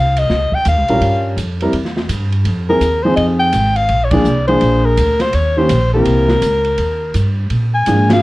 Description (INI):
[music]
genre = jazz, small-group swing and bop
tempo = 166 BPM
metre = 4/4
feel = swing 64% on 8ths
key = unclear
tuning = A4 = 439 Hz
[part]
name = breathy soprano saxophone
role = melody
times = 0.0-8.2 s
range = Bb4 to Ab5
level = -16 LUFS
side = left 1 dB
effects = none
[part]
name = upright bass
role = bass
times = 0.0-8.2 s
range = Ab1 to Bb2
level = -16 LUFS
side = right 1 dB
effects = none
[part]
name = open jazz drum kit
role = drums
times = 0.2-8.2 s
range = hi-hat, kick drum, ride cymbal, snare drum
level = -24 LUFS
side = right 1 dB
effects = none
[part]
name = warm baby grand piano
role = accompaniment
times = 0.9-8.2 s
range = Eb3 to Bb4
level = -16 LUFS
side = equal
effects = none
[sound]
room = light reverb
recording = worn, warbling old tape, cassette tape, warbly pitch drift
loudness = -12 LUFS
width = side -19 dB against mid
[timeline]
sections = 0.0-8.2 A section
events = band accent 4.1, 8.1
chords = 0.0 Eb7(no3); 1.0 Gm7b5; 1.7 Em; 2.5 Fm7; 3.9 Bb7; 5.3 Eb7; 6.1 C7; 6.8 Eb; 7.5 Bb7